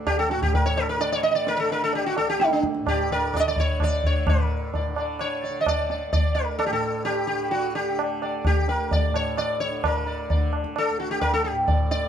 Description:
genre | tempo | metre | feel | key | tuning
indian classical, Hindustani | 129 BPM | 3/4 | straight | unclear | A4 = 440 Hz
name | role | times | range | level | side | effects
tanpura | drone | 0.0-12.1 s | D2 to D3 | -34 LUFS | equal | none
sitar | melody | 0.1-12.1 s | D4 to Eb5 | -24 LUFS | right 1 dB | plate reverb
tabla | percussion | 0.1-12.1 s | none | -25 LUFS | equal | none
room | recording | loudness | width
moderate studio reverb, RT60 0.6 s | dark, warm production | -21 LUFS | side -9 dB against mid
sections
0.0-4.3 A section; 4.3-12.1 B section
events
none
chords
none

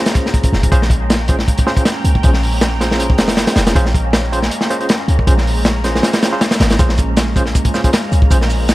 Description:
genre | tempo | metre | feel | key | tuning
drum and bass, jungle | 158 BPM | 4/4 | swing 54% on 16ths | Bb dorian | A4 = 438 Hz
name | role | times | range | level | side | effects
lush unison pad | sustained chords | 0.0-8.7 s | Ab3 to G5 | -24 LUFS | equal | chorus, phaser
barky tine electric piano | stabs | 0.0-8.4 s | Db4 to C5 | -22 LUFS | right 1 dB | medium tremolo, dub echo
wind-like tuned noise texture | texture | 0.0-8.7 s | Bb5 | -29 LUFS | right 1 dB | built-in reverb
crunchy breakbeat drum kit | drums | 0.1-8.7 s | hi-hat, kick drum, snare drum | -14 LUFS | equal | none
warm 808-style bass | bass | 0.5-8.7 s | F1 to Db2 | -16 LUFS | equal | none
dusty soul sampler-style drum kit | drums | 6.8-8.7 s | hi-hat, shaker, snare drum | -28 LUFS | right 2 dB | overdrive, high-pass filter on perc, high-pass filter on snare, high-pass filter on hats, high-pass filter on room
room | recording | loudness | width
studio reverb | vinyl crackle | -12 LUFS | side -17 dB against mid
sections
0.0-8.7 A section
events
none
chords
0.0 Bbm7

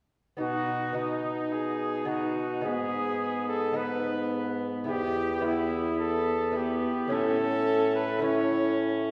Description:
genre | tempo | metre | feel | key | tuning
classical, renaissance-style consort dance | 107 BPM | 4/4 | straight | B mixolydian | A4 = 440 Hz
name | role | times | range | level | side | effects
clear cornet | melody | 0.4-9.0 s | D#4 to C#5 | -33 LUFS | equal | none
rich viola | second line | 0.4-9.1 s | B3 to D#4 | -36 LUFS | equal | none
lute | accompaniment | 0.4-9.1 s | E2 to E4 | -35 LUFS | equal | none
mellow bassoon | bass | 0.4-9.1 s | E2 to B2 | -34 LUFS | equal | none
room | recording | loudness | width
wet concert hall reverb, RT60 1.8 s | heard from further back in the room | -28 LUFS | mono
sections
0.4-9.1 A section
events
none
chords
0.4 B; 2.6 G#m; 4.9 Em; 7.1 A

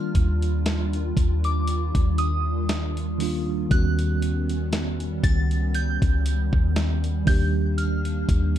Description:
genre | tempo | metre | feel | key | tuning
contemporary R&B | 59 BPM | 4/4 | swing 54% on 16ths | Eb major | A4 = 440 Hz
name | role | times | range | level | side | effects
soft synth bell | melody | 0.0-8.6 s | D6 to A6 | -33 LUFS | right 2 dB | chorus, phaser, tape echo
mellow tine electric piano | accompaniment | 0.0-8.6 s | Eb3 to G4 | -29 LUFS | right 3 dB | medium stereo tremolo
hollow soft pad | sustained chords | 0.0-8.6 s | Eb3 to F4 | -32 LUFS | equal | ensemble chorus
clean 808-style bass | bass | 0.1-8.6 s | Db2 to Fb2 | -24 LUFS | equal | none
dusty soul sampler-style drum kit | drums | 0.1-8.6 s | hi-hat, kick drum, snare drum | -24 LUFS | equal | none
room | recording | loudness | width
little or no reverb | dark, warm production | -21 LUFS | side -11 dB against mid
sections
0.0-8.6 A section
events
none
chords
0.0 Ebmaj9; 3.7 Eb7alt; 7.3 Ebmaj7

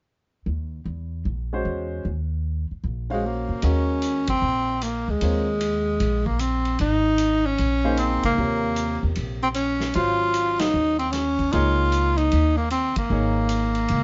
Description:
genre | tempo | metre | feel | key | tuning
modal jazz | 152 BPM | 4/4 | swing 65% on 8ths | Eb dorian | A4 = 440 Hz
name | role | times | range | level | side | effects
upright bass | bass | 0.5-14.0 s | Ab1 to Bb2 | -28 LUFS | equal | none
warm concert grand piano | accompaniment | 1.5-5.5, 7.8-14.0 s | C3 to F5 | -31 LUFS | equal | none
warm tenor saxophone | melody | 3.1-14.0 s | Ab3 to F4 | -25 LUFS | equal | none
vintage drum kit | drums | 3.6-14.0 s | hi-hat, kick drum, ride cymbal, snare drum | -36 LUFS | equal | none
room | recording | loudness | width
light reverb | band playing live in one room, nothing above 7.5 kHz | -23 LUFS | mono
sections
0.5-3.6 A section; 3.6-14.0 B section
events
band accent 4.2, 8.2, 10.5, 12.9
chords
0.5 Eb9sus4; 10.0 Ab9sus4

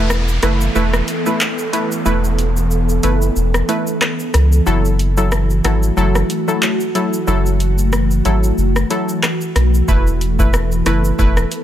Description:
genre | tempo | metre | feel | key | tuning
dancehall | 92 BPM | 4/4 | swing 56% on 16ths | unclear | A4 = 440 Hz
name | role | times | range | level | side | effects
glassy wavetable pluck | accompaniment | 0.0-11.4 s | F#3 to B4 | -20 LUFS | equal | chorus
ethereal airy pad | sustained chords | 0.2-11.6 s | E3 to A4 | -21 LUFS | equal | ensemble chorus, built-in reverb, sidechain pumping
round analog bass | bass | 0.0-11.5 s | E1 to C#2 | -16 LUFS | equal | none
downlifter | sound effects | 0.0-4.7 s | none | -28 LUFS | equal | none
booming analog drum machine | drums | 0.1-11.6 s | handclaps, hi-hat, kick drum, rim click, shaker | -20 LUFS | equal | overdrive
room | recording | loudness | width
digital ambience | none | -14 LUFS | side -11 dB against mid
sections
0.0-11.6 A section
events
break 0.0-9.9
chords
0.0 Esus4; 4.7 F#m7; 9.9 Esus4

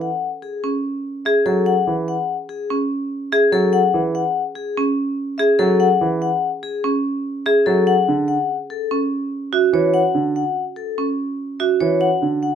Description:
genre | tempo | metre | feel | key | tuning
classical, minimalist pattern music | 145 BPM | 5/4 | straight | unclear | A4 = 440 Hz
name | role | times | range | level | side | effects
vibraphone with medium hard mallets | melody | 0.0-12.6 s | G#4 to F#5 | -21 LUFS | left 8 dB | none
warm concert grand piano | accompaniment | 0.0-12.5 s | D3 to F#3 | -20 LUFS | right 3 dB | none
marimba with hard mallets | arpeggios | 0.6-11.9 s | C#4 to G#4 | -20 LUFS | right 2 dB | none
room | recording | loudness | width
light reverb | close, detailed microphones | -17 LUFS | side -8 dB against mid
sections
0.0-12.6 A section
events
none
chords
0.0 F#7(no3); 7.9 Dmaj7; 12.0 Bm (rootless)

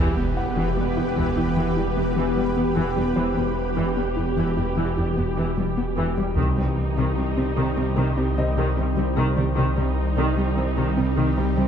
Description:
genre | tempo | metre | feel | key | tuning
cinematic, hybrid orchestral and electronic film score | 75 BPM | 4/4 | straight | E minor | A4 = 441 Hz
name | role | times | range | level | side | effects
warm symphonic viola section | accompaniment | 0.0-11.7 s | Eb3 to G4 | -28 LUFS | right 1 dB | none
shimmering ambient pad | sustained chords | 0.0-11.7 s | B2 to C5 | -26 LUFS | equal | chorus, built-in reverb
soft round pluck | arpeggios | 0.0-11.7 s | C3 to E4 | -29 LUFS | left 3 dB | chorus, ping-pong delay
dark symphonic cello section | bass | 0.0-11.7 s | E2 to C3 | -29 LUFS | right 3 dB | none
swelling detuned saw bass | bass | 0.0-11.7 s | E1 to C2 | -26 LUFS | equal | none
impact | sound effects | 0.0-3.2 s | none | -32 LUFS | equal | none
clear grand piano | texture | 0.4-11.7 s | C5 to F#5 | -36 LUFS | left 2 dB | ping-pong delay
taiko ensemble | drums | 1.2-1.5, 6.4-7.9 s | none | -28 LUFS | equal | none
room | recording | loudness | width
moderate concert hall reverb, RT60 2.2 s | dark, warm production | -20 LUFS | side -8 dB against mid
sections
0.0-11.7 A section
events
band accent 0.0-0.8; impact 0.0-3.2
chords
0.0 Em; 6.4 Cm

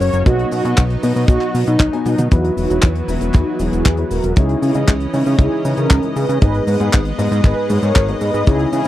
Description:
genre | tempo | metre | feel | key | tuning
italo disco | 117 BPM | 4/4 | straight | unclear | A4 = 436 Hz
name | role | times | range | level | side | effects
mellow synth brass | melody | 0.0-8.9 s | C#4 to D#5 | -21 LUFS | right 1 dB | chorus, tape echo
lush unison pad | sustained chords | 0.0-8.9 s | E3 to D#5 | -25 LUFS | right 1 dB | chorus
warm concert grand piano | stabs | 0.0-8.9 s | G#2 to G#5 | -23 LUFS | left 4 dB | vintage 12-bit sampler grit, low-pass filter
fat analog bass | bass | 0.0-8.9 s | E1 to C#3 | -18 LUFS | equal | none
tight funk drum kit | drums | 0.0-8.9 s | cabasa, handclaps, hi-hat, toms | -24 LUFS | equal | high-pass filter on hats, high-pass filter on toms, high-pass filter on snare, high-pass filter on perc, high-pass filter on room
kick drum | drums | 0.3-8.6 s | none | -12 LUFS | equal | none
room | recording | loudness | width
little or no reverb | dry, close 1970s-style studio recording | -13 LUFS | side -14 dB against mid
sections
0.0-2.3 A section; 2.3-8.9 B section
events
drum fill 2.1; filter sweep on analog polysynth 2.3-8.9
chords
0.3 B; 2.3 Esus2; 4.4 C#madd9; 6.4 G#m

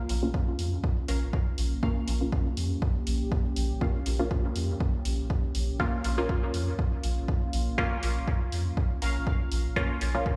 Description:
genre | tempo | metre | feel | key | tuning
dub techno | 121 BPM | 4/4 | swing 54% on 16ths | Bb dorian | A4 = 441 Hz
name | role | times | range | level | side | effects
dark analog pad | sustained chords | 0.0-10.4 s | Bb3 to Bb4 | -40 LUFS | equal | chorus, sidechain pumping
filtered dub chord stab | riff | 0.0-9.9 s | Db4 to F5 | -43 LUFS | equal | phaser, lush chorus, sidechain pumping, dub echo
soft dub sub bass | bass | 0.1-10.2 s | Bb1 to F2 | -31 LUFS | equal | sidechain pumping
electronic hi-hat | drums | 0.1-10.1 s | none | -42 LUFS | equal | none
filtered dub chord stab | stabs | 0.2-10.3 s | Bb3 to F4 | -35 LUFS | equal | phaser, sidechain pumping, dub echo
electronic kick drum | drums | 0.3-10.4 s | none | -30 LUFS | equal | none
room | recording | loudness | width
light reverb, digital ambience | played on a big sound system in a bare room, large studio reverb | -29 LUFS | mono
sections
0.0-10.4 A section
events
none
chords
0.0 Bbm

